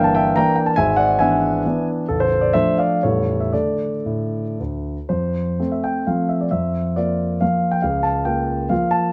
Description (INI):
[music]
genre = classical, romantic triple-time dance for piano with dotted rhythms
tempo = 107-154 BPM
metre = 3/4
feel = rubato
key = D minor, F major from 5.1 s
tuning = A4 = 440 Hz
[part]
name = warm grand piano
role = solo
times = 0.0-9.1 s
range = A0 to Bb5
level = -20 LUFS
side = equal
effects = none
[sound]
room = moderate recital hall reverb, RT60 1.4 s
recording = close, detailed microphones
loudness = -20 LUFS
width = mono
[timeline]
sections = 0.0-5.1 A section; 5.1-9.1 B section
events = none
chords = 0.0 Em7b5/G; 0.8 E7/G#; 2.1 Dm/A; 3.0 A7; 3.5 D5; 5.1 F; 6.5 Bb/F; 7.8 Bbm/Db